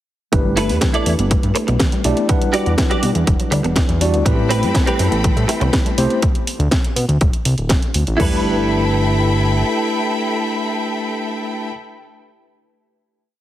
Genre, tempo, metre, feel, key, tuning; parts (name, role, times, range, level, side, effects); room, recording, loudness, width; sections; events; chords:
nu-disco, nu disco; 122 BPM; 4/4; straight; G major; A4 = 440 Hz
tine electric piano; accompaniment; 0.3-11.7 s; G3 to F#5; -22 LUFS; left 1 dB; medium stereo tremolo, vintage 12-bit sampler grit, sidechain pumping, low-pass filter, dub echo
analog pluck; arpeggios; 0.3-8.4 s; E3 to B3; -26 LUFS; right 1 dB; chorus, sidechain pumping, digital delay
fat analog bass; bass; 0.3-9.6 s; D1 to B2; -18 LUFS; equal
house drum kit; drums; 0.3-8.3 s; crash cymbal, kick drum, toms; -18 LUFS; equal; overdrive
house drum kit; drums; 0.3-8.2 s; hi-hat, snare drum; -23 LUFS; equal; overdrive
direct-recorded clean electric guitar; riff; 0.6-11.7 s; C4 to D5; -23 LUFS; right 2 dB; ensemble chorus, dub echo
bright studio string section; sustained chords; 4.3-11.7 s; C4 to B5; -24 LUFS; left 1 dB; sidechain pumping
light reverb; heavily compressed radio sound, multiband compression; -15 LUFS; side -13 dB against mid
0.3-8.2 groove; 8.2-12.1 final chord
filter sweep on tine electric piano 0.3-6.2
0.3 G69; 2.3 Em9; 4.3 Am9; 6.2 D5; 8.2 G69